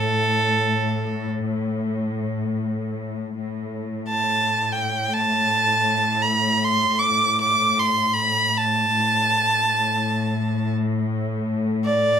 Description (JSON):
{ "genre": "Turkish makam ensemble", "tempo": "free time", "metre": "none", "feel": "none", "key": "A makam ussak", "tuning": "A4 = 440 Hz", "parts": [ { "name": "clear violin", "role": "melody", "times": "0.0-12.2 s", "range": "A4 to D6", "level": "-19 LUFS", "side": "right 2 dB", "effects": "slapback echo" }, { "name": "warm studio cello section", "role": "drone", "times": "0.0-12.2 s", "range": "A2", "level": "-24 LUFS", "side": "left 2 dB", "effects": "none" } ], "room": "light reverb", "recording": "close, detailed microphones", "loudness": "-19 LUFS", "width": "side -8 dB against mid", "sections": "0.0-3.4 A section; 3.4-12.2 A section", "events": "none", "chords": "none" }